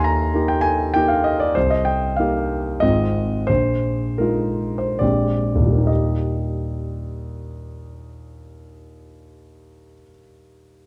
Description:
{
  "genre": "classical, romantic character piece for solo piano",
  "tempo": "65-104 BPM",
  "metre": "3/4",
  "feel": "rubato",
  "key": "Eb major",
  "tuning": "A4 = 440 Hz",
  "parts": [
    { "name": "warm concert grand piano", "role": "solo", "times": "0.0-10.9 s", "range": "Ab1 to Bb5", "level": "-21 LUFS", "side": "equal", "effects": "none" }
  ],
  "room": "light reverb",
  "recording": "close, detailed microphones",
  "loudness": "-20 LUFS",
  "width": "mono",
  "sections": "0.0-5.9 A section; 5.9-10.8 B section",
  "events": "slowing down 0.6-5.9",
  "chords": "0.0 Eb; 1.6 Cm7; 2.8 Fm7/Ab; 3.5 Bb7sus4; 5.0 Bb13; 5.9 Eb",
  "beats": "0.34 0.94 | 1.56 2.18 2.82 | 3.49 4.21 5.01 | 5.89 6.70 7.53 | 8.34 9.14 9.96"
}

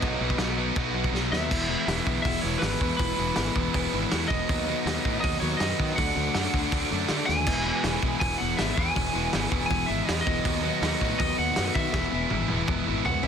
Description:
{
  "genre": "punk rock",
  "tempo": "161 BPM",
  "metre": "4/4",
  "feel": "straight",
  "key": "E major",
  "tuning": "A4 = 439 Hz",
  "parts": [
    { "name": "lightly driven lead guitar", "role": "melody", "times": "0.0-13.3 s", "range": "B4 to G#5", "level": "-30 LUFS", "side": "right 1 dB", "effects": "digital delay" },
    { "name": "cranked stack guitar", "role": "riff", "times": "0.0-13.3 s", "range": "B2 to F#4", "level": "-31 LUFS", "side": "right 14 dB", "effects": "overdrive" },
    { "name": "overdriven semi-hollow guitar", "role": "riff", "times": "0.0-13.3 s", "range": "E2 to D4", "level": "-31 LUFS", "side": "left 15 dB", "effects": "none" },
    { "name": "overdriven semi-hollow guitar", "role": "riff", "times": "0.0-13.3 s", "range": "B2 to F#4", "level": "-34 LUFS", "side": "right 1 dB", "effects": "none" },
    { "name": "fretless electric bass", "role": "bass", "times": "0.0-13.3 s", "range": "E1 to D#3", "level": "-32 LUFS", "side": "equal", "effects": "none" },
    { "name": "loose indie drum kit", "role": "drums", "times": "0.0-13.3 s", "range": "crash cymbal, hi-hat, kick drum, snare drum, splash cymbal, toms", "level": "-30 LUFS", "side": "equal", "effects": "soft clipping on kick" }
  ],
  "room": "little or no reverb",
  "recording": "dense, heavily limited modern master",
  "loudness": "-23 LUFS",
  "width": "side -7 dB against mid",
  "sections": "0.0-1.5 A section; 1.5-13.3 B section",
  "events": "drum fill 1.1-1.5, 7.3, 11.9-13.3",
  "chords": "0.0 B; 1.5 E; 4.5 B/D#; 6.0 D; 7.5 E; 10.5 B/D#; 11.9 E",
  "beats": "| 0.03 0.40 0.77 1.14 | 1.51 1.88 2.25 2.63 | 3.00 3.37 3.74 4.12 | 4.49 4.86 5.23 5.61 | 5.98 6.35 6.73 7.10 | 7.47 7.84 8.22 8.59 | 8.96 9.34 9.71 10.08 | 10.46 10.83 11.20 11.57 | 11.94 12.31 12.69 13.06"
}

